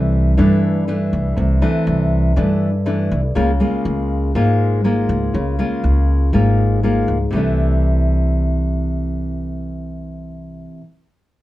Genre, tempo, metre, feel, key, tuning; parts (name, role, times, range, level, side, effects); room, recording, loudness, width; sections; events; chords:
bossa nova; 121 BPM; 4/4; straight; A4 = 440 Hz
nylon-string guitar; accompaniment; 0.0-10.9 s; G2 to F4; -18 LUFS; equal
upright bass; bass; 0.0-10.6 s; Ab1 to G2; -18 LUFS; equal
wet studio reverb, RT60 0.5 s; heard from further back in the room; -15 LUFS; side -16 dB against mid
0.0-7.3 A section; 7.3-11.3 B section
0.0 C69; 3.4 Db6; 7.3 C69